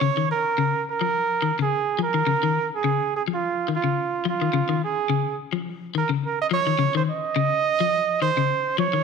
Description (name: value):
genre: afrobeat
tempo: 106 BPM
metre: 4/4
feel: swing 54% on 16ths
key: unclear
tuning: A4 = 440 Hz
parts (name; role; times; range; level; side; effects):
- warm trumpet; melody; 0.0-9.0 s; F4 to Eb5; -23 LUFS; right 7 dB; none
- electric guitar at the edge of break-up; arpeggios; 0.0-9.0 s; Db3 to F3; -25 LUFS; left 9 dB; spring reverb
room: moderate echo chamber reverb, RT60 1.5 s, small room ambience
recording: 1960s-style stereo with parts hard left and right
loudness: -21 LUFS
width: side -6 dB against mid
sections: 0.0-9.0 A section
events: none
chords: 0.0 Dbadd9